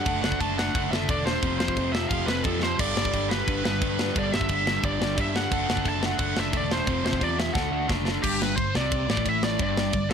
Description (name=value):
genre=punk rock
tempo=176 BPM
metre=4/4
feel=straight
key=G major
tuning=A4 = 440 Hz
part: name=bluesy overdriven lead guitar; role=melody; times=0.0-10.1 s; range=G4 to A5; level=-29 LUFS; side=equal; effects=distortion
part: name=distorted electric guitar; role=riff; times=0.0-10.1 s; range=F2 to D4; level=-28 LUFS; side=left 1 dB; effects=distortion
part: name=picked electric bass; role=bass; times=0.1-10.1 s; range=E1 to G2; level=-31 LUFS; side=equal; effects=none
part: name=tight metal drum kit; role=drums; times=0.1-10.1 s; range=crash cymbal, kick drum, ride cymbal, snare drum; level=-28 LUFS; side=equal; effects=none
room=light reverb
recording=none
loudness=-23 LUFS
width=side -7 dB against mid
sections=0.0-8.2 A section; 8.2-10.1 B section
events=drum fill 2.6, 7.6-8.2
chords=0.1 D/F#; 1.4 F5; 2.8 G; 5.5 D/F#; 6.9 F5; 7.6 D; 8.2 G5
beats=| 0.07 0.41 0.75 1.09 | 1.43 1.77 2.11 2.45 | 2.79 3.13 3.47 3.81 | 4.16 4.50 4.83 5.17 | 5.51 5.86 6.20 6.54 | 6.88 7.22 7.55 7.89 | 8.23 8.57 8.91 9.25 | 9.59 9.93